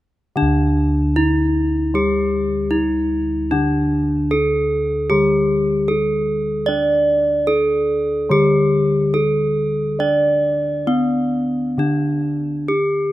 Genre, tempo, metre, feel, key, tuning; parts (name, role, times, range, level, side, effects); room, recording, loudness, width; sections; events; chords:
Javanese gamelan; 75 BPM; 4/4; uneven beats; D pelog barang; A4 = 440 Hz
gamelan-type bronze metallophone; melody; 0.4-13.1 s; B3+20c to D5; -17 LUFS; right 1 dB
gamelan-type bronze metallophone; accompaniment; 0.4-13.1 s; D3 to D4; -25 LUFS; left 2 dB
gamelan-type bossed gongs; bass; 0.4-13.1 s; D2 to D5; -23 LUFS; left 1 dB
light reverb, small room reverb; rough home demo mix; -16 LUFS; side -15 dB against mid
0.4-13.1 A section